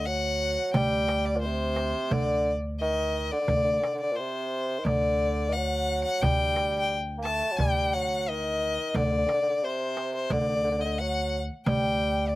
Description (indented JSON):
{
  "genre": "Arabic maqam ensemble",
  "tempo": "88 BPM",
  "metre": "4/4",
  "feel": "straight",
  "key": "D maqam hijaz",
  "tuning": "A4 = 440 Hz",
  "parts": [
    { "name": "mellow bassoon", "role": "melody", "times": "0.0-12.3 s", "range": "Bb2 to Bb3", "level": "-30 LUFS", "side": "right 2 dB", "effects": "none" },
    { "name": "warm violin", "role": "second line", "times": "0.0-12.4 s", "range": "C5 to A5", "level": "-28 LUFS", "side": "left 3 dB", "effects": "slapback echo" },
    { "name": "upright bass", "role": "bass", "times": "0.0-12.4 s", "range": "D2", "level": "-30 LUFS", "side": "equal", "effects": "none" },
    { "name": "darbuka", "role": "percussion", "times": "0.4-12.3 s", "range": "none", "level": "-33 LUFS", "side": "right 2 dB", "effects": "none" }
  ],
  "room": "little or no reverb",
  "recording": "recorded outdoors, with no room sound",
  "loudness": "-24 LUFS",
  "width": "side -17 dB against mid",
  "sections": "0.0-12.4 A section",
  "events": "none",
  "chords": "none",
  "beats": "0.06 0.74 1.43 | 2.11 2.80 3.48 4.17 | 4.85 5.53 6.22 6.90 | 7.58 8.26 8.95 9.63 | 10.31 10.99 11.67 12.35"
}